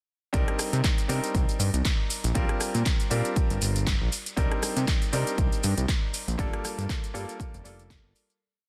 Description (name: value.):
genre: nu-disco, nu disco.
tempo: 119 BPM.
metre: 4/4.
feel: swing 55% on 16ths.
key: C dorian.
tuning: A4 = 440 Hz.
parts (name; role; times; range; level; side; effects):
bright grand piano; accompaniment; 0.3-8.4 s; G3 to Bb4; -35 LUFS; equal; sidechain pumping, delay.
fat analog bass; bass; 0.3-8.1 s; F1 to C3; -29 LUFS; equal; tube saturation.
electronic kick drum; drums; 0.3-8.0 s; none; -29 LUFS; equal; none.
house drum kit; drums; 0.3-8.4 s; cabasa, handclaps, hi-hat, rim click; -34 LUFS; equal; none.
room: digital ambience.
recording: dense, heavily limited modern master.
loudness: -27 LUFS.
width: mono.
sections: 0.3-8.4 drop.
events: drop 0.3-8.4; fade-out 5.7-8.4.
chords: 0.3 Cm7; 2.4 Bb6; 4.1 Cm7; 6.4 Gm7.